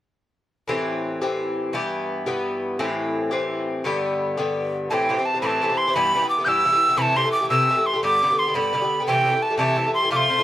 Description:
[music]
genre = celtic folk, Celtic jig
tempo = 115 BPM (dotted quarters)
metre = 6/8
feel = straight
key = A minor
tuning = A4 = 439 Hz
[part]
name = Irish bouzouki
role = accompaniment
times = 0.7-10.4 s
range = G2 to G4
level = -23 LUFS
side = left 1 dB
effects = none
[part]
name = hollow mid whistle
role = melody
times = 4.9-10.4 s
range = G5 to G6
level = -19 LUFS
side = right 1 dB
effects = none
[sound]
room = moderate studio reverb, RT60 0.5 s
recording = lossy compression artefacts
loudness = -19 LUFS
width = side -13 dB against mid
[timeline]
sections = 0.7-4.9 A section; 4.9-10.4 B section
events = none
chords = 0.7 Am7; 1.8 Em; 2.8 Am7; 3.9 G; 4.9 Am7; 5.9 Em; 7.0 Am7; 8.0 G; 9.1 Am7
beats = | 0.70 1.23 | 1.75 2.28 | 2.81 3.33 | 3.85 4.38 | 4.90 5.43 | 5.95 6.47 | 6.99 7.51 | 8.03 8.55 | 9.07 9.59 | 10.11

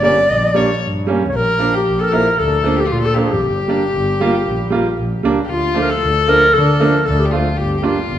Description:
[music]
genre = klezmer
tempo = 115 BPM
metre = 4/4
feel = straight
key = G minor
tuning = A4 = 438 Hz
[part]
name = mellow clarinet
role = melody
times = 0.0-8.2 s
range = F4 to D5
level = -16 LUFS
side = left 1 dB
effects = none
[part]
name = warm violin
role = second line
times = 0.0-8.2 s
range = F4 to D5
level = -23 LUFS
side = left 4 dB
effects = none
[part]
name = bright upright piano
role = accompaniment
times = 0.0-8.0 s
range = F3 to F4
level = -19 LUFS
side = right 3 dB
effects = none
[part]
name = warm double bass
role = bass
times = 0.0-8.2 s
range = G1 to D3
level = -20 LUFS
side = equal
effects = none
[sound]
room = wet recital hall reverb, RT60 1.4 s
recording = minimal, uncompressed stereo recording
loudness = -13 LUFS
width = side -10 dB against mid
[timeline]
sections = 0.0-5.5 A section; 5.5-8.2 B section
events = none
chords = 0.0 Gm; 1.3 Bb; 3.4 Gm; 5.5 Dm; 7.6 Gm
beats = 0.29 0.82 | 1.34 1.86 2.38 2.90 | 3.43 3.95 4.47 4.99 | 5.51 6.03 6.54 7.06 | 7.58 8.10

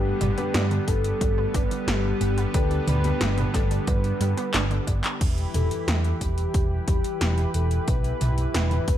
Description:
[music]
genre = synthwave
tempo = 90 BPM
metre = 4/4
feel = straight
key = E minor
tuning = A4 = 440 Hz
[part]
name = soft octave-layered synth lead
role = melody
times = 0.0-9.0 s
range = G4 to B4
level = -31 LUFS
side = left 3 dB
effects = chorus, phaser, tape echo
[part]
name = lush unison pad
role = sustained chords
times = 0.0-9.0 s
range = D3 to B4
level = -30 LUFS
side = right 2 dB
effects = chorus, sidechain pumping
[part]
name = analog pluck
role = arpeggios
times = 0.0-5.0 s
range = D3 to D4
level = -35 LUFS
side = right 4 dB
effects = chorus, digital delay
[part]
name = dark grand piano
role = stabs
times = 0.0-5.2 s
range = B3 to B4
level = -35 LUFS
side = left 4 dB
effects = digital delay
[part]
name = picked electric bass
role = bass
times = 0.0-9.0 s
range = E1 to G2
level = -25 LUFS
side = equal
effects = sidechain pumping
[part]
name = 80s electronic pad drums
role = drums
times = 0.2-9.0 s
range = crash cymbal, handclaps, hi-hat, snare drum, toms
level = -29 LUFS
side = equal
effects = gated reverb on snare and toms
[part]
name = electronic kick drum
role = drums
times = 0.9-9.0 s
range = none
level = -25 LUFS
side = equal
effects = none
[sound]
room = light reverb, digital ambience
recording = none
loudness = -21 LUFS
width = side -11 dB against mid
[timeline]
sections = 0.0-5.2 A section; 5.2-9.0 B section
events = drum fill 4.5-5.2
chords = 0.0 G; 5.2 Em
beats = 0.55 1.21 1.88 | 2.54 3.21 3.88 4.54 | 5.21 5.88 6.54 7.21 | 7.88 8.54

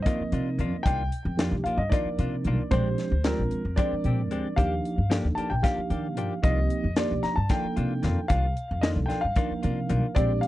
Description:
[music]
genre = electric jazz fusion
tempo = 226 BPM (eighths)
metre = 7/8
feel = straight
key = C minor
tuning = A4 = 441 Hz
[part]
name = warm concert grand piano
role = melody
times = 0.0-10.5 s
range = Bb4 to Bb5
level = -31 LUFS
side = left 1 dB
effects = none
[part]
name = mellow tine electric piano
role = accompaniment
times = 0.0-10.5 s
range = F3 to Bb4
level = -31 LUFS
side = right 3 dB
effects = phaser
[part]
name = upright bass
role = bass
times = 0.0-10.4 s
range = Bb1 to Eb3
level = -27 LUFS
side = equal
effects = none
[part]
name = direct-recorded clean electric guitar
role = stabs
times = 0.1-10.3 s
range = Eb3 to G4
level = -34 LUFS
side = left 5 dB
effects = wide subtle chorus
[part]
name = tight funk drum kit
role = drums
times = 0.1-10.5 s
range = hi-hat, kick drum, snare drum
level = -26 LUFS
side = equal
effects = vintage 12-bit sampler grit
[sound]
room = little or no reverb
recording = dry, close 1970s-style studio recording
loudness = -24 LUFS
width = side -15 dB against mid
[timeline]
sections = 0.0-10.5 A section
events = none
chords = 0.0 Cm11; 2.7 Bb13; 4.6 Ebmaj9; 6.4 Cm11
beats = 0.06 0.32 0.59 | 0.85 1.12 1.39 1.65 1.92 2.18 2.45 | 2.71 2.98 3.25 3.51 3.78 4.04 4.31 | 4.57 4.84 5.11 5.37 5.64 5.90 6.17 | 6.43 6.70 6.97 7.23 7.50 7.76 8.03 | 8.30 8.56 8.83 9.10 9.36 9.63 9.89 | 10.16 10.43

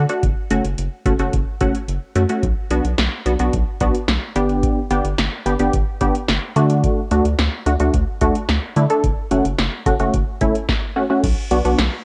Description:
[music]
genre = synth-pop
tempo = 109 BPM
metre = 4/4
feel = straight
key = unclear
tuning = A4 = 439 Hz
[part]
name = funky polysynth comp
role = accompaniment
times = 0.0-11.8 s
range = A3 to A4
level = -22 LUFS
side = equal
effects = chorus
[part]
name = rubbery square bass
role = bass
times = 0.0-11.9 s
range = F#1 to D3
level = -23 LUFS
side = equal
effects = none
[part]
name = electro analog drum machine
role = drums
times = 0.1-11.9 s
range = crash cymbal, hi-hat, kick drum, snare drum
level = -24 LUFS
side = equal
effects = none
[sound]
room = light reverb, digital ambience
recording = worn, warbling old tape, cassette tape, warbly pitch drift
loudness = -19 LUFS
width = mono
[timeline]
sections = 0.0-11.2 A section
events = none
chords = 0.2 F#m; 2.4 Bm; 4.4 G; 6.6 D; 9.0 F#m; 11.2 Bm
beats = | 0.23 0.78 1.33 1.88 | 2.43 2.98 3.53 4.08 | 4.63 5.18 5.73 6.29 | 6.83 7.39 7.94 8.49 | 9.04 9.59 10.14 10.69 | 11.24 11.79

